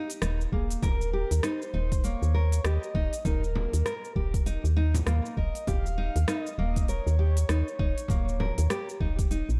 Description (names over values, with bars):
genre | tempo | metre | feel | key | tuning
organic downtempo | 99 BPM | 4/4 | swing 60% on 16ths | Eb mixolydian | A4 = 440 Hz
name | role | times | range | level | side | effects
nylon-string guitar | arpeggios | 0.0-9.5 s | Bb3 to Bb4 | -37 LUFS | equal | tape echo
organic electronic drum kit | drums | 0.1-9.6 s | hi-hat, rim click, shaker | -39 LUFS | equal | none
woody FM bass | bass | 0.2-9.6 s | Eb1 to Eb2 | -29 LUFS | equal | sidechain pumping
breathy flute-like synth lead | melody | 0.5-8.7 s | Ab4 to F5 | -40 LUFS | equal | subtle chorus, tape echo
electronic kick drum | drums | 0.5-9.3 s | none | -31 LUFS | equal | none
frame drum | percussion | 0.8-8.5 s | none | -39 LUFS | equal | none
room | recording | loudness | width
digital ambience | dark, warm production | -28 LUFS | mono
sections
0.0-9.6 A section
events
none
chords
0.0 Eb5